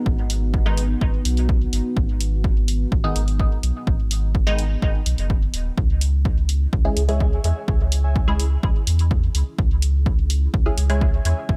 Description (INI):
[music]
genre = dub techno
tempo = 126 BPM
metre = 4/4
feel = straight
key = G# minor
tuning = A4 = 440 Hz
[part]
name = deep dark ambient pad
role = sustained chords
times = 0.0-11.6 s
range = B3 to G#4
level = -36 LUFS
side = equal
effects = chorus, built-in reverb, sidechain pumping
[part]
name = round analog bass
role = bass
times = 0.1-11.6 s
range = D#1 to E2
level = -23 LUFS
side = equal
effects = sidechain pumping
[part]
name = electronic kick drum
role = drums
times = 0.1-11.6 s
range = none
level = -23 LUFS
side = equal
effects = none
[part]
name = electronic hi-hat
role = drums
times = 0.3-11.3 s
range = none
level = -31 LUFS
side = equal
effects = none
[part]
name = filtered dub chord stab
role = stabs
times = 0.7-11.1 s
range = D#3 to G#4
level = -31 LUFS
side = equal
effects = phaser, dub echo
[part]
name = warbly lo-fi synth keys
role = riff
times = 7.1-11.4 s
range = C#5 to G#5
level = -37 LUFS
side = equal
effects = chorus, sidechain pumping, dub echo
[sound]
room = little or no reverb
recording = echo-heavy mix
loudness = -21 LUFS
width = mono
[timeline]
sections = 0.0-11.6 A section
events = none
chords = 0.0 G#m; 5.8 C#m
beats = | 0.06 0.54 1.01 1.49 | 1.97 2.44 2.92 3.40 | 3.87 4.35 4.82 5.30 | 5.78 6.25 6.73 7.21 | 7.68 8.16 8.63 9.11 | 9.59 10.06 10.54 11.01 | 11.49